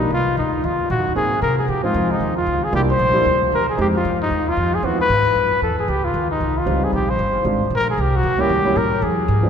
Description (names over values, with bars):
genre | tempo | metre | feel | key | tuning
jazz, small-group swing and bop | 229 BPM | 4/4 | swing 59% on 8ths | unclear | A4 = 441 Hz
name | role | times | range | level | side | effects
breathy trumpet | melody | 0.0-9.5 s | Eb4 to C5 | -19 LUFS | left 1 dB | none
warm baby grand piano | accompaniment | 0.0-9.5 s | F3 to G4 | -24 LUFS | right 1 dB | none
upright bass | bass | 0.0-9.5 s | G1 to C3 | -22 LUFS | equal | none
room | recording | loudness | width
wet cathedral reverb, RT60 4.6 s | recorded in a church or concert hall | -16 LUFS | side -7 dB against mid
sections
0.0-1.7 A section; 1.7-9.5 B section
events
none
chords
0.0 Cm7; 0.6 Ebm; 1.2 Ab7; 1.7 Dbmaj9; 2.7 C7; 3.8 Fm9; 4.8 Ab7alt; 5.9 Dbmaj9#11; 6.9 Bb9; 8.0 Cadd9; 8.5 A7b9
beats
0.10 0.37 | 0.63 0.89 1.16 1.42 | 1.68 1.94 2.21 2.47 | 2.73 2.99 3.25 3.52 | 3.78 4.04 4.30 4.57 | 4.83 5.09 5.35 5.62 | 5.88 6.14 6.40 6.66 | 6.92 7.19 7.45 7.71 | 7.97 8.23 8.49 8.76 | 9.02 9.28